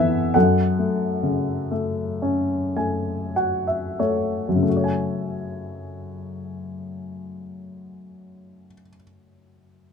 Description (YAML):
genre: classical, lyrical solo piano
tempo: 44-74 BPM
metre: 4/4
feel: rubato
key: F# minor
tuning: A4 = 442 Hz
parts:
  - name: warm baby grand piano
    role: solo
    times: 0.0-9.9 s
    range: E2 to G#5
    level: -21 LUFS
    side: left 1 dB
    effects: none
room: moderate studio ambience, RT60 0.5 s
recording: minimal, uncompressed stereo recording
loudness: -20 LUFS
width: side -6 dB against mid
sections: 0.0-4.7 A section; 4.7-9.8 B section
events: slowing down 0.0-4.7; grand piano fill 2.2-4.7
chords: 0.4 F#m; 4.7 F#madd9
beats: | 0.35 1.24 2.23 3.37 | 4.67 5.99 7.25 8.49